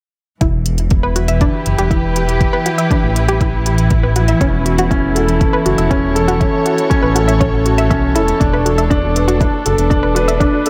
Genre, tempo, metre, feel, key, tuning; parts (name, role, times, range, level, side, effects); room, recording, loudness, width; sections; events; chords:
piano and strings electronica; 120 BPM; 4/4; straight; E dorian; A4 = 441 Hz
muted studio string section; sustained chords; 0.4-10.7 s; E3 to C#5; -22 LUFS; equal; sidechain pumping
analog pluck; arpeggios; 0.4-10.5 s; C#4 to E5; -23 LUFS; equal; chorus, sidechain pumping, digital delay
dark detuned saw bass; bass; 0.4-10.5 s; E1 to B1; -19 LUFS; equal; sidechain pumping
electronic hi-hat; drums; 0.4-10.7 s; -27 LUFS; equal
electronic kick drum; drums; 0.4-10.5 s; -19 LUFS; equal; overdrive
dark upright piano; riff; 4.4-10.7 s; C#4 to B4; -19 LUFS; equal; digital delay
light reverb, small room ambience; -14 LUFS; mono
0.4-10.7 A section
0.4 Em; 4.4 F#m7/E; 8.4 Bm7/E